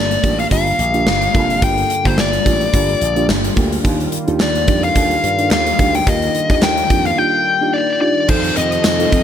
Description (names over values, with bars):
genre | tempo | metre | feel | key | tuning
1980s-style pop | 108 BPM | 4/4 | swing 55% on 16ths | unclear | A4 = 437 Hz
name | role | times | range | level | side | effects
smooth overdriven lead guitar | melody | 0.0-9.2 s | C5 to G5 | -17 LUFS | left 3 dB | none
mellow FM electric piano | accompaniment | 0.0-9.2 s | G2 to A4 | -21 LUFS | right 2 dB | chorus
warm analog pad | sustained chords | 0.0-9.2 s | D3 to A4 | -26 LUFS | right 1 dB | chorus
slap bass with an envelope filter | bass | 0.0-9.2 s | F1 to G2 | -22 LUFS | right 1 dB | none
gated 80s drum kit | drums | 0.1-9.2 s | crash cymbal, hi-hat, kick drum, snare drum, tambourine | -17 LUFS | equal | none
group handclap | percussion | 4.4-9.0 s | none | -33 LUFS | right 10 dB | none
cranked stack guitar | accompaniment | 8.3-9.2 s | F2 to F3 | -26 LUFS | right 8 dB | overdrive, lush chorus
room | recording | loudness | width
light reverb, small room ambience | none | -13 LUFS | side -9 dB against mid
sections
0.0-8.3 A section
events
none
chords
0.0 Gm7; 3.8 Ebmaj9; 8.3 F7